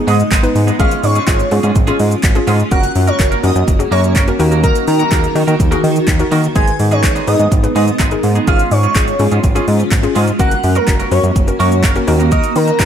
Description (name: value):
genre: dance-pop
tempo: 125 BPM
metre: 4/4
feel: straight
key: G# dorian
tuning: A4 = 442 Hz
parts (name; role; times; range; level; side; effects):
- hollow square pluck; accompaniment; 0.0-12.9 s; B3 to B4; -20 LUFS; left 3 dB; chorus, sidechain pumping
- granular cloud pad; sustained chords; 0.0-12.9 s; D#3 to A#4; -21 LUFS; right 1 dB; built-in reverb, lush chorus, sidechain pumping
- airy dreamy lead; melody; 0.1-12.9 s; A#4 to G#5; -19 LUFS; equal; chorus, sidechain pumping, ping-pong delay
- twangy electric guitar; riff; 0.1-12.9 s; G#3 to A#4; -23 LUFS; right 4 dB; wide subtle chorus
- fat analog bass; bass; 0.1-12.9 s; F#1 to D#3; -15 LUFS; equal; sidechain pumping
- pop drum kit; drums; 0.1-12.9 s; handclaps, hi-hat, kick drum, shaker; -16 LUFS; equal; overdrive
room: light reverb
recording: none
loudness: -11 LUFS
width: side -9 dB against mid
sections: 0.0-12.9 A section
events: none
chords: 0.0 G#m; 0.8 C#/G#; 2.7 F#; 4.4 D#m; 6.6 G#m; 8.5 C#/G#; 10.4 F#; 12.1 D#m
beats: 0.32 | 0.80 1.28 1.76 2.24 | 2.72 3.20 3.68 4.16 | 4.64 5.12 5.60 6.08 | 6.56 7.04 7.52 8.00 | 8.48 8.96 9.44 9.92 | 10.40 10.88 11.36 11.84 | 12.32 12.80